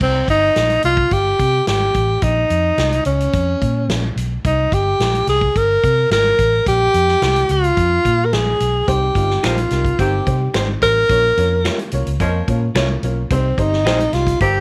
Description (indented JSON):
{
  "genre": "uptempo 1960s-style soul",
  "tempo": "108 BPM",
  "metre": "4/4",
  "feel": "straight",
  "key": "unclear",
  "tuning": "A4 = 439 Hz",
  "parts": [
    { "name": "breathy tenor saxophone", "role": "melody", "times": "0.0-14.6 s", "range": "C4 to Bb4", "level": "-18 LUFS", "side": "equal", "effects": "none" },
    { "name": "vintage muted fingered electric bass", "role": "bass", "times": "0.0-14.6 s", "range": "G1 to C3", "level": "-22 LUFS", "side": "equal", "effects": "none" },
    { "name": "swinging big-band drum kit", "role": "drums", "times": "0.0-14.5 s", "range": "crash cymbal, hi-hat, kick drum, snare drum", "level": "-26 LUFS", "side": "equal", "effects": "none" },
    { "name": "dark upright piano", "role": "accompaniment", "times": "8.9-14.6 s", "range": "G3 to Eb5", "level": "-28 LUFS", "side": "equal", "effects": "none" },
    { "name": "electric guitar through a small old amp", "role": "stabs", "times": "9.4-14.0 s", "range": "Eb4 to Db5", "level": "-28 LUFS", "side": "equal", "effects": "none" },
    { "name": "finger snap", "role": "percussion", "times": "9.4-14.0 s", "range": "none", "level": "-31 LUFS", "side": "equal", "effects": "none" },
    { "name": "warm saxophone section", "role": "second line", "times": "10.0-14.6 s", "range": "Eb3 to Bb4", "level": "-26 LUFS", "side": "equal", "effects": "none" }
  ],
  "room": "light reverb, studio reverb",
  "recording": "none",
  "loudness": "-17 LUFS",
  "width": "mono",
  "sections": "0.0-14.6 A section",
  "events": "none",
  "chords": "0.0 Cm; 2.2 Bbm; 4.4 C5; 6.7 Bb5; 8.9 Cm; 11.1 Bbm; 13.3 Cm"
}